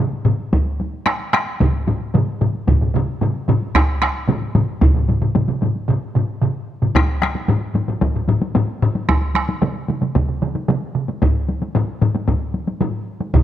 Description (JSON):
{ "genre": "japanese traditional, taiko drum ensemble", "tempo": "112 BPM", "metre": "4/4", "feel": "straight", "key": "none", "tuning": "none", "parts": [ { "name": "taiko ensemble", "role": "percussion", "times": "0.1-13.4 s", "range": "none", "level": "-23 LUFS", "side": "left 1 dB", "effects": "none" }, { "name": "taiko ensemble", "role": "percussion", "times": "0.2-13.4 s", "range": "none", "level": "-20 LUFS", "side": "left 3 dB", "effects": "none" }, { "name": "taiko ensemble", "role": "percussion", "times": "0.3-13.4 s", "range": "none", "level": "-22 LUFS", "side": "right 6 dB", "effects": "none" }, { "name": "solo taiko drums", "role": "percussion", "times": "0.5-13.4 s", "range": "none", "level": "-19 LUFS", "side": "right 1 dB", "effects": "none" } ], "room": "light reverb", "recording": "close, detailed microphones", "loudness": "-17 LUFS", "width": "side -11 dB against mid", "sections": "0.0-7.0 A section; 7.0-13.4 B section", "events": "stop 5.9-7.0", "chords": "none", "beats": "| 0.53 1.06 1.60 2.14 | 2.68 3.21 3.75 4.28 | 4.82 5.36 5.89 6.42 | 6.96 7.49 8.03 8.56 | 9.09 9.63 10.16 10.69 | 11.22 11.75 12.29 12.81 | 13.35" }